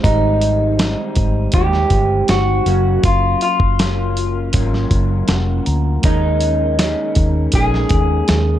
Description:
indie pop, bedroom pop; 80 BPM; 4/4; straight; Ab major; A4 = 440 Hz
electric guitar through a small old amp; melody; 0.0-8.6 s; Eb4 to Ab4; -19 LUFS; equal; lush chorus, tape echo
electric guitar through a small old amp; accompaniment; 0.0-8.6 s; Ab2 to Ab4; -25 LUFS; left 2 dB; lush chorus, warbly pitch drift
mellow tine electric piano; accompaniment; 0.0-8.6 s; Gb3 to Bb5; -26 LUFS; right 4 dB; medium stereo tremolo, cassette tape
vintage muted fingered electric bass; bass; 0.0-8.6 s; F1 to Eb2; -18 LUFS; equal
dusty soul sampler-style drum kit; drums; 0.0-8.5 s; hi-hat, kick drum, snare drum; -18 LUFS; equal
light reverb, digital ambience; dark, warm production; -14 LUFS; side -12 dB against mid
0.0-8.6 A section
tine electric piano fill 4.9-6.0
0.0 Abmaj7; 2.7 Gbmaj7; 6.0 Eb7sus4

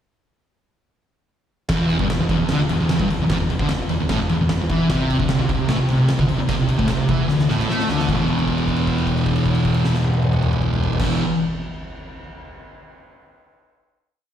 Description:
garage rock duo or trio; 151 BPM; 4/4; straight; A4 = 439 Hz
thick fuzz guitar; riff; 1.7-11.2 s; E2 to A3; -18 LUFS; equal; distortion, slapback echo
growling picked electric bass; bass; 1.7-11.2 s; E1 to A2; -28 LUFS; equal; overdrive
oversized low-tuned drum kit; drums; 1.7-11.1 s; crash cymbal, kick drum, ride cymbal, snare drum, toms; -24 LUFS; equal
light reverb, studio reverb; live gig heard through the venue's PA, recital hall reverb; -17 LUFS; side -10 dB against mid
1.7-8.1 riff; 8.1-11.2 final chord
drum fill 7.3-8.1; held note 8.1-11.0
1.7 N.C.; 4.9 Amadd11; 8.1 E5

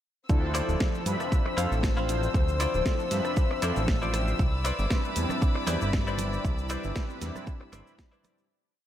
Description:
nu-disco, nu disco; 117 BPM; 4/4; swing 55% on 16ths; D dorian; A4 = 440 Hz
mellow synth brass; accompaniment; 0.3-8.5 s; F3 to B5; -33 LUFS; equal; chorus, cassette tape, sidechain pumping, ping-pong delay
warm chamber string section; sustained chords; 0.3-8.5 s; C5 to E6; -34 LUFS; left 4 dB; sidechain pumping
fat analog bass; bass; 0.3-7.8 s; D1 to G2; -29 LUFS; equal; tube saturation, sidechain pumping
electronic kick drum; drums; 0.3-8.1 s; -26 LUFS; equal
house drum kit; drums; 0.3-8.5 s; cabasa, hi-hat, rim click, snare drum; -36 LUFS; right 1 dB
direct-recorded clean electric guitar; riff; 0.5-8.4 s; E4 to F5; -35 LUFS; left 2 dB; lush chorus, ping-pong delay
cabasa and congas; percussion; 4.4-8.5 s; -41 LUFS; right 5 dB
light reverb, digital ambience; -25 LUFS; side -11 dB against mid
0.3-8.5 drop
drop 0.3-8.5; fade-out 5.8-8.5
0.3 Dm9; 4.4 Cmaj9

